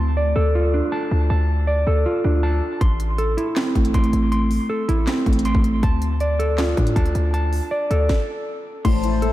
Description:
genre	hip hop, trap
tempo	159 BPM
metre	4/4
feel	half-time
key	unclear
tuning	A4 = 440 Hz
part	mellow electric guitar	arpeggios	0.0-9.3 s	A3 to C6	-22 LUFS	right 1 dB	low-pass filter, diffuse ambient delay
part	hard-hitting 808-style bass	bass	0.0-9.3 s	A1 to A2	-20 LUFS	equal	none
part	trap drum kit	drums	2.8-9.3 s	crash cymbal, handclaps, hi-hat, kick drum, snare drum	-22 LUFS	equal	none
part	felt-muted upright piano	accompaniment	8.8-9.3 s	A2 to E3	-22 LUFS	left 10 dB	low-pass filter
part	warm analog pad	sustained chords	8.9-9.3 s	E4 to A5	-26 LUFS	left 6 dB	chorus
room	moderate church reverb, RT60 3.7 s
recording	dreamy mix soaked in reverb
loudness	-18 LUFS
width	side -15 dB against mid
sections	0.0-8.8 A section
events	stop 8.1-8.8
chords	0.0 Dm; 2.8 Am; 5.8 Dm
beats	0.17 0.55 0.92 | 1.30 1.68 2.06 2.43 | 2.81 3.19 3.56 3.94 | 4.32 4.70 5.08 5.45 | 5.83 6.21 6.58 6.96 | 7.34 7.72 8.09 8.47 | 8.85 9.23

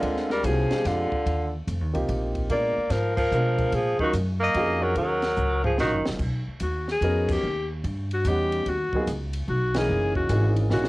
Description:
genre	jazz, small-group swing and bop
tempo	146 BPM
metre	3/4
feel	swing 65% on 8ths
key	Eb minor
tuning	A4 = 440 Hz
part	warm alto saxophone	melody	0.0-10.9 s	F4 to Eb5	-26 LUFS	left 2 dB	cassette tape
part	growling tenor saxophone	second line	0.0-6.0 s	D3 to Bb3	-27 LUFS	right 2 dB	cassette tape, plate reverb
part	warm grand piano	accompaniment	0.0-10.9 s	Fb3 to F#5	-29 LUFS	right 1 dB	cassette tape, plate reverb
part	upright bass	bass	0.0-10.9 s	Eb1 to Cb3	-27 LUFS	equal	none
part	compact cocktail drum kit	drums	0.0-10.9 s	crash cymbal, hi-hat, kick drum, ride cymbal, snare drum, toms	-35 LUFS	equal	cassette tape
room	light reverb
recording	home recording on cassette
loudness	-22 LUFS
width	side -20 dB against mid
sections	0.0-6.2 A section; 6.2-10.9 B section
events	band accent 3.1, 7.2, 9.7; drum fill 5.4-6.2, 10.7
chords	0.0 Bb13; 1.3 Eb69; 2.5 Bb7b9; 3.7 Ebm9; 6.2 Bmaj9; 7.4 Eb7alt; 8.7 Abm7 (rootless); 9.9 Gb13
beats	| 0.02 0.43 0.85 | 1.26 1.67 2.08 | 2.49 2.90 3.31 | 3.73 4.14 4.55 | 4.96 5.37 5.79 | 6.20 6.61 7.02 | 7.43 7.84 8.26 | 8.67 9.08 9.49 | 9.90 10.31 10.72

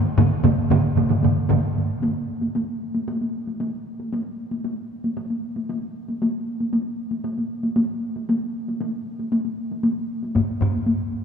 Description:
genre	japanese traditional, taiko drum ensemble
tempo	115 BPM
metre	4/4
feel	straight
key	none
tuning	none
part	taiko ensemble	percussion	0.1-11.0 s	none	-24 LUFS	left 1 dB	none
part	taiko ensemble	percussion	0.2-1.6, 10.4-10.7 s	none	-22 LUFS	left 1 dB	none
part	taiko ensemble	percussion	0.2-1.6 s	none	-22 LUFS	right 5 dB	none
room	wet church reverb, RT60 2.7 s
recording	recorded in a church or concert hall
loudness	-21 LUFS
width	side -7 dB against mid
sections	0.0-2.0 A section; 2.0-11.2 B section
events	none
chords	none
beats	0.45 0.97 1.50 | 2.02 2.55 3.08 3.60 | 4.12 4.64 5.17 5.69 | 6.21 6.73 7.25 7.77 | 8.29 8.81 9.33 9.85 | 10.36 10.88

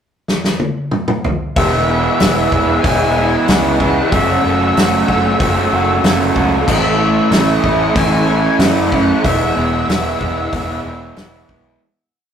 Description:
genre	rock, shoegaze and dream pop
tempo	94 BPM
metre	4/4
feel	straight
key	E major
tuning	A4 = 435 Hz
part	loose indie drum kit	drums	0.3-11.6 s	crash cymbal, hi-hat, kick drum, snare drum, toms	-18 LUFS	equal	none
part	lush unison pad	sustained chords	1.5-11.8 s	G#4 to E6	-24 LUFS	equal	chorus
part	octave-fuzz lead guitar	melody	1.6-11.4 s	E5 to G#5	-21 LUFS	left 2 dB	distortion
part	crunchy overdriven guitar	riff	1.6-11.8 s	E2 to F#4	-17 LUFS	right 3 dB	none
part	raw garage guitar	riff	1.6-11.8 s	E2 to G#4	-20 LUFS	left 3 dB	overdrive
part	growling picked electric bass	bass	1.6-11.7 s	E1 to F#2	-20 LUFS	left 1 dB	overdrive
room	wet studio reverb, RT60 0.6 s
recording	rough rehearsal-room recording, tube saturation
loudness	-12 LUFS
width	side -8 dB against mid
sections	0.0-1.6 pickup bar; 1.6-11.8 A section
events	drum fill 0.3-1.6; fade-out 9.2-11.8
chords	0.0 N.C.; 1.6 Eadd9; 4.1 F#m7; 6.7 A; 9.2 Eadd9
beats	0.29 0.93 | 1.57 2.21 2.85 3.49 | 4.13 4.76 5.40 6.04 | 6.68 7.32 7.96 8.60 | 9.25 9.89 10.53 11.17

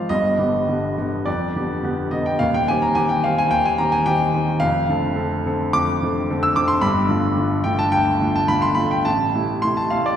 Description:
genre	classical, romantic character piece for solo piano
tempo	107 BPM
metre	4/4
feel	rubato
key	unclear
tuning	A4 = 440 Hz
part	warm grand piano	solo	0.0-10.2 s	Eb1 to E6	-17 LUFS	equal	none
room	wet concert hall reverb, RT60 2.2 s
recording	heard from further back in the room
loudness	-17 LUFS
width	side -9 dB against mid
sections	0.0-10.2 A section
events	none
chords	0.1 G; 1.3 G7/F; 2.4 Cm/Eb; 4.6 Dm7/F; 6.9 G9; 9.1 Am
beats	| 0.11 0.69 1.26 1.83 | 2.40 2.97 3.53 4.08 | 4.63 5.19 5.77 6.32 | 6.85 7.39 7.94 8.50 | 9.07 9.64

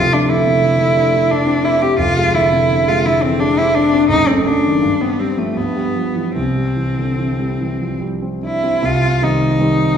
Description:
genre	classical, romantic duo for cello and grand piano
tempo	71-90 BPM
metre	3/4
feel	rubato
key	C major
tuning	A4 = 441 Hz
part	rich cello	melody	0.0-10.0 s	A3 to G4	-15 LUFS	equal	none
part	dark concert grand piano	accompaniment	0.0-10.0 s	F1 to E4	-17 LUFS	right 1 dB	none
room	wet recital hall reverb, RT60 1.7 s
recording	heard from further back in the room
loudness	-13 LUFS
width	side -8 dB against mid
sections	0.0-8.9 A section; 8.9-10.0 B section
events	none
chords	0.0 Dm7/F; 2.0 Dm7b5/F; 4.1 F#dim7; 4.8 C5/G; 5.6 G7; 6.4 C; 8.9 Cm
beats	0.63 1.31 | 1.99 2.70 3.40 | 4.10 4.82 5.57 | 6.37 7.19 8.03 | 8.85 9.60

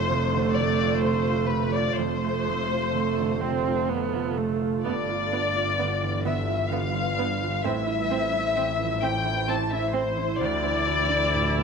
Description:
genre	neoclassical piano and strings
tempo	64 BPM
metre	3/4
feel	rubato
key	unclear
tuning	A4 = 440 Hz
part	muted chamber violin section	melody	0.0-11.6 s	B4 to A5	-26 LUFS	left 5 dB	none
part	muted viola	accompaniment	0.0-11.6 s	A3 to E4	-28 LUFS	right 10 dB	none
part	warm baby grand piano	accompaniment	0.0-11.6 s	D2 to F4	-31 LUFS	right 10 dB	none
part	ethereal airy pad	sustained chords	0.0-11.6 s	E3 to D5	-33 LUFS	left 1 dB	ensemble chorus, built-in reverb
part	muted double bass	bass	0.0-11.6 s	F1 to D2	-30 LUFS	left 2 dB	none
room	moderate echo chamber reverb, RT60 1.7 s, small room ambience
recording	1960s-style stereo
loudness	-23 LUFS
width	side -5 dB against mid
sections	0.0-11.6 A section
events	none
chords	0.0 F; 4.8 G7; 7.6 Am; 10.4 Dmadd9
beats	0.08 1.02 | 1.97 2.93 3.89 | 4.84 5.78 6.72 | 7.64 8.56 9.48 | 10.40 11.32

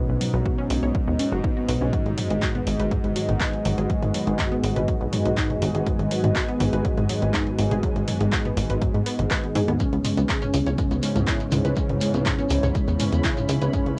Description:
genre	melodic techno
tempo	122 BPM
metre	4/4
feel	straight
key	G# minor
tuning	A4 = 442 Hz
part	sweeping resonant pad	sustained chords	0.0-14.0 s	B3 to D#5	-34 LUFS	equal	chorus, sidechain pumping, cassette tape
part	unison pluck	arpeggios	0.0-13.8 s	F#3 to C#5	-32 LUFS	equal	sidechain pumping, cassette tape, analog delay
part	analog synth brass	stabs	0.0-14.0 s	G#2 to C#4	-31 LUFS	equal	chorus, sidechain pumping, cassette tape, analog delay
part	bowed-like drone	drone	0.0-14.0 s	G#2	-38 LUFS	equal	none
part	granular cloud pad	texture	0.3-14.0 s	D#4 to B5	-41 LUFS	equal	none
part	plucky analog bass	bass	0.1-13.9 s	F#1 to G#2	-27 LUFS	equal	sidechain pumping
part	punchy analog drum machine	drums	0.2-14.0 s	handclaps, hi-hat, toms	-31 LUFS	equal	sidechain pumping on hats, cassette tape, sidechain pumping on toms
part	electronic kick drum	drums	0.5-13.8 s	none	-28 LUFS	equal	cassette tape
part	shekere	percussion	9.8-13.8 s	none	-42 LUFS	equal	none
room	moderate booth ambience, RT60 0.3 s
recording	home recording on cassette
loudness	-23 LUFS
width	mono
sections	0.0-14.0 A section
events	filter sweep on analog polysynth 0.0-14.0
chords	0.0 Badd9; 1.9 G#m7; 9.8 C#m7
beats	0.46 0.95 1.44 | 1.93 2.42 2.92 3.41 | 3.90 4.39 4.88 5.37 | 5.87 6.36 6.85 7.34 | 7.83 8.32 8.82 9.31 | 9.80 10.29 10.78 11.28 | 11.77 12.26 12.75 13.24 | 13.73

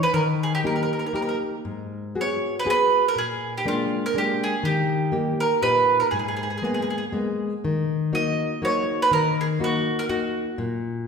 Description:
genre	italian folk, Italian serenade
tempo	121 BPM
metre	3/4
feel	swing 54% on 8ths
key	G# minor, Eb minor from 7.6 s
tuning	A4 = 440 Hz
part	bowl-back mandolin	melody	0.0-10.6 s	E#4 to Eb5	-23 LUFS	right 3 dB	none
part	nylon-string guitar	accompaniment	0.0-11.1 s	G#2 to G#4	-25 LUFS	left 3 dB	none
room	wet recital hall reverb, RT60 1.6 s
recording	heard from further back in the room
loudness	-21 LUFS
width	side -6 dB against mid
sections	0.0-7.6 A section; 7.6-11.1 B section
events	none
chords	0.1 D#; 1.6 G#m7; 3.2 A#7; 4.6 D#; 6.1 G#madd9; 7.6 Ebm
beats	| 0.14 0.64 1.14 | 1.65 2.15 2.65 | 3.15 3.65 4.14 | 4.63 5.12 5.62 | 6.12 6.62 7.12 | 7.63 8.13 8.62 | 9.12 9.61 10.10 | 10.59

